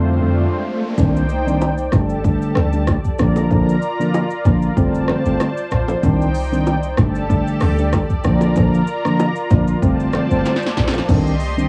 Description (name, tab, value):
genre	afrobeats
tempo	95 BPM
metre	4/4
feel	swing 55% on 16ths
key	Bb major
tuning	A4 = 440 Hz
part	mellow tine electric piano	accompaniment	0.0-11.7 s	F2 to D4	-20 LUFS	equal	cassette tape
part	warm analog pad	sustained chords	0.0-11.7 s	A3 to C6	-26 LUFS	equal	chorus, sidechain pumping, cassette tape
part	riser	sound effects	0.0-1.0, 9.5-11.1 s	none	-32 LUFS	equal	none
part	clean 808-style bass	bass	1.0-11.7 s	F1 to D2	-24 LUFS	equal	none
part	deep house drum kit	drums	1.0-11.7 s	crash cymbal, hi-hat, kick drum, rim click, shaker, snare drum	-24 LUFS	equal	cassette tape
part	congas and bongos	percussion	1.0-11.3 s	none	-25 LUFS	equal	none
room	light reverb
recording	home recording on cassette, small room ambience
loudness	-17 LUFS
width	mono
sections	1.0-11.1 A section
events	break 0.0-1.0; riser 0.0-1.0; drum fill 10.5-11.1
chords	0.0 F6; 1.0 Cmadd9; 1.9 Gsus2; 3.2 Bb; 4.8 F6; 6.0 Cmadd9; 7.0 Gsus2; 8.2 Bb; 9.8 F6; 11.1 Cmadd9